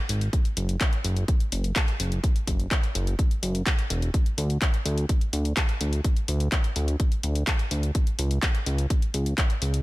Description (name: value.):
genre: progressive house.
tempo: 126 BPM.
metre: 4/4.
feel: straight.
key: unclear.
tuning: A4 = 439 Hz.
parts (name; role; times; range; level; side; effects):
fat analog bass; bass; 0.1-9.8 s; E1 to D2; -24 LUFS; equal; tube saturation, sidechain pumping.
house drum kit; drums; 0.1-9.8 s; handclaps, hi-hat; -30 LUFS; left 1 dB; sidechain pumping on hats.
electronic kick drum; drums; 0.3-9.5 s; none; -23 LUFS; equal; none.
room: little or no reverb.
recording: none.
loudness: -23 LUFS.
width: side -19 dB against mid.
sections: 0.0-9.8 A section.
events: none.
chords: none.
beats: | 0.33 0.81 1.28 1.76 | 2.24 2.71 3.19 3.66 | 4.14 4.62 5.09 5.57 | 6.04 6.52 7.00 7.47 | 7.95 8.43 8.90 9.38.